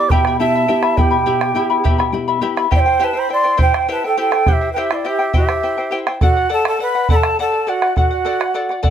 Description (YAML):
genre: andean folk, Andean ensemble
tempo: 69 BPM (dotted quarters)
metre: 6/8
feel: straight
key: unclear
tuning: A4 = 439 Hz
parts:
  - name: mellow quena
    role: melody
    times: 0.0-8.8 s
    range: D5 to D6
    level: -19 LUFS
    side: right 2 dB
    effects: none
  - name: breathy bright large quena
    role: second line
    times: 0.0-8.8 s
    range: E4 to E5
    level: -21 LUFS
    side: right 3 dB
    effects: none
  - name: charango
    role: accompaniment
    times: 0.0-8.9 s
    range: E4 to B5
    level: -21 LUFS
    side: left 5 dB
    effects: none
  - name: nylon-string guitar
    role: accompaniment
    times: 0.0-2.7 s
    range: B2 to G4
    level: -21 LUFS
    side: left 4 dB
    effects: none
  - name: bombo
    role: percussion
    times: 0.1-8.9 s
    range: none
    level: -17 LUFS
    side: right 1 dB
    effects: none
room: moderate small room ambience, RT60 0.5 s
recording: none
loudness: -14 LUFS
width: side -9 dB against mid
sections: 0.0-2.7 A section; 2.7-8.9 A section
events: none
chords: 0.0 Em; 2.7 C; 6.2 D